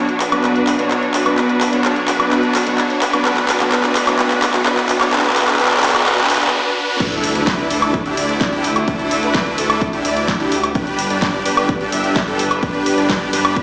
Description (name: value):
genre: EDM, festival progressive house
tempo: 128 BPM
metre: 4/4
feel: straight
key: D major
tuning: A4 = 436 Hz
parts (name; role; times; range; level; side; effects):
- bright chamber string section; sustained chords; 0.0-13.6 s; A2 to B4; -24 LUFS; equal; vintage 12-bit sampler grit, sidechain pumping
- supersaw chords; riff; 0.0-13.6 s; D4 to E5; -19 LUFS; equal; wide subtle chorus, sidechain pumping, low-pass filter, dub echo
- riser and impact; sound effects; 1.1-8.9 s; none; -26 LUFS; equal; none
- pop drum kit; drums; 0.1-13.6 s; crash cymbal, handclaps, hi-hat, snare drum, woodblock; -18 LUFS; equal; none
- dark concert grand piano; accompaniment; 0.3-6.5 s; B2 to B4; -20 LUFS; equal; sidechain pumping, dub echo
- wide detuned saw bass; bass; 7.0-13.6 s; G1 to D2; -24 LUFS; equal; chorus, sidechain pumping
- electronic kick drum; drums; 7.0-13.6 s; none; -21 LUFS; equal; none
room: wet digital room reverb, RT60 1.0 s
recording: played on a big sound system in a bare room, large studio reverb, high-pass filter, small speaker sound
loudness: -14 LUFS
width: side -33 dB against mid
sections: 0.0-7.0 A section; 7.0-13.6 B section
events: build-up 0.0-7.0; drum fill 0.0-6.5; break 6.5-7.0; drop 7.0-13.6; impact 7.0-8.9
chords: 0.0 Bm; 3.3 Asus4; 7.0 Dsus2; 10.8 G